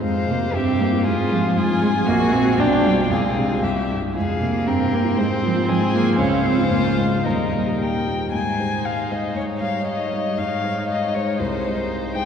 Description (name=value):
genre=quick classical-period movement for piano quintet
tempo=117 BPM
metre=2/4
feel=rubato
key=F minor, Ab major from 6.2 s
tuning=A4 = 440 Hz
part: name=muted violin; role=melody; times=0.0-12.3 s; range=C5 to Ab5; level=-26 LUFS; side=left 4 dB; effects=none
part: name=muted cello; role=second line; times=0.0-12.3 s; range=F3 to D4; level=-23 LUFS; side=right 2 dB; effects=none
part: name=muted violin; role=second line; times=0.0-12.3 s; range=F4 to Db5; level=-29 LUFS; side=left 3 dB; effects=none
part: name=dark baby grand piano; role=accompaniment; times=0.0-12.3 s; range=Bb1 to Db5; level=-23 LUFS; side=equal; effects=none
part: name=muted viola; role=accompaniment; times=0.5-12.3 s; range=C4 to G4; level=-29 LUFS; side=right 1 dB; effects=none
room=wet cathedral reverb, RT60 4.4 s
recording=dark, warm production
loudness=-18 LUFS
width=side -7 dB against mid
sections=0.0-8.3 A section; 8.3-12.3 B section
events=none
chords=0.0 Fm; 0.5 C7/G; 1.1 Fm/Ab; 2.1 Gb/Bb; 2.6 Bdim7; 3.1 Fm/C; 3.6 C; 4.2 Fm; 4.7 C7/G; 5.2 Fm/Ab; 6.2 Dbmaj7; 7.2 Eb; 8.3 Ab; 9.4 Eb7/Ab; 10.4 Ab; 11.4 Ab/C